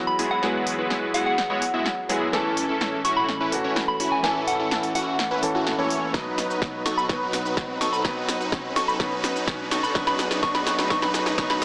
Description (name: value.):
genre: EDM, festival progressive house.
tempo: 126 BPM.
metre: 4/4.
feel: straight.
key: E major.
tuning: A4 = 440 Hz.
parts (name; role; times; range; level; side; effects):
bright baby grand piano; accompaniment; 0.0-11.6 s; E3 to B4; -28 LUFS; equal; sidechain pumping.
lush unison pad; sustained chords; 0.0-11.6 s; E2 to B4; -38 LUFS; equal; chorus, sidechain pumping.
riser; sound effects; 3.1-11.6 s; none; -36 LUFS; equal; none.
soft synth bell; melody; 0.1-11.6 s; F#5 to C#6; -26 LUFS; equal; chorus, phaser, dub echo.
supersaw chords; riff; 0.2-11.6 s; G#3 to E5; -27 LUFS; equal; sidechain pumping, low-pass filter, dub echo.
big-room dance drum kit; drums; 0.2-11.6 s; hi-hat, shaker, snare drum; -28 LUFS; equal; overdrive, high-pass filter on snare, high-pass filter on hats, high-pass filter on perc.
electronic kick drum; drums; 6.1-11.5 s; none; -30 LUFS; equal; none.
room: moderate lush hall reverb, RT60 1.9 s.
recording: small speaker sound.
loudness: -21 LUFS.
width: side -29 dB against mid.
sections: 0.0-11.6 A section.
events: build-up 0.0-11.6; drum fill 0.0-11.6; filter sweep on analog synth pad 0.0-11.6.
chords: 0.0 Eadd9; 2.3 A; 6.1 B; 10.0 F#madd9.